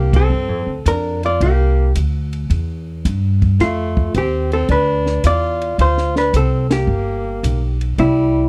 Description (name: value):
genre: jazz, small-group swing and bop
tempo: 109 BPM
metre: 4/4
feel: swing 68% on 8ths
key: C major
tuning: A4 = 436 Hz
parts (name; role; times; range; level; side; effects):
- vintage hollow-body jazz guitar; melody; 0.0-8.5 s; E4 to D5; -21 LUFS; equal; none
- breathy alto saxophone; second line; 0.0-8.5 s; G3 to F4; -26 LUFS; equal; none
- upright bass; bass; 0.0-8.5 s; G1 to G2; -20 LUFS; equal; none
- compact cocktail drum kit; drums; 0.1-8.2 s; hi-hat, kick drum, ride cymbal, snare drum; -23 LUFS; equal; none
room: light reverb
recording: dry, close 1970s-style studio recording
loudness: -17 LUFS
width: mono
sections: 0.0-8.5 A section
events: band accent 0.0, 6.6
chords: 0.0 Bb69; 1.4 C9; 3.6 F6; 5.8 Csus4; 6.9 Gm; 8.0 C